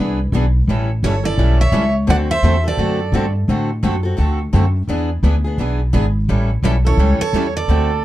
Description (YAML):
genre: acoustic string swing (jazz manouche)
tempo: 171 BPM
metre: 4/4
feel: swing 60% on 8ths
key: unclear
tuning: A4 = 442 Hz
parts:
  - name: picked steel-string acoustic guitar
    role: accompaniment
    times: 0.0-7.9 s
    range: D3 to A4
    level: -22 LUFS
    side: left 2 dB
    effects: none
  - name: picked steel-string acoustic guitar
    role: accompaniment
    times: 0.0-7.9 s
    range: D3 to B4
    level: -27 LUFS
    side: right 5 dB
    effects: none
  - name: upright bass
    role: bass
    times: 0.0-8.0 s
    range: G1 to A2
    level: -16 LUFS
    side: equal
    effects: none
  - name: picked steel-string acoustic guitar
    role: melody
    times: 1.0-3.3, 6.7-8.0 s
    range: A4 to F#5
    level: -22 LUFS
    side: right 1 dB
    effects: none
  - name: rich violin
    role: second line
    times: 1.0-3.3, 6.7-8.0 s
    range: E4 to D5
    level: -25 LUFS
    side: right 8 dB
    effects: none
room: little or no reverb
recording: dark, warm production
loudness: -14 LUFS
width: side -14 dB against mid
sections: 0.0-8.0 A section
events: none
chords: 0.0 E7; 0.7 A7; 2.1 D7; 4.9 E7; 6.3 A7